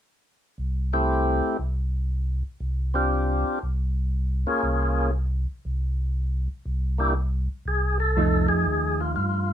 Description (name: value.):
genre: jazz.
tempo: 119 BPM.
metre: 4/4.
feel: swing 66% on 8ths.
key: unclear.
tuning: A4 = 438 Hz.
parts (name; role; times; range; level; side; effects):
mellow tonewheel organ; bass; 0.6-9.5 s; C2 to G2; -24 LUFS; equal; overdrive, chorus vibrato, slow rotary speaker.
percussive tonewheel organ; melody; 0.9-9.5 s; A3 to A4; -24 LUFS; left 1 dB; slow rotary speaker.
vintage hollow-body jazz guitar; accompaniment; 8.2-9.5 s; F3 to Eb4; -28 LUFS; right 6 dB; none.
room: moderate studio ambience, RT60 0.5 s.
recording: minimal, uncompressed stereo recording.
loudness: -23 LUFS.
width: side -10 dB against mid.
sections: 0.1-8.2 A section; 8.2-9.5 B section.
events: none.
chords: 0.1 C6; 8.2 F9.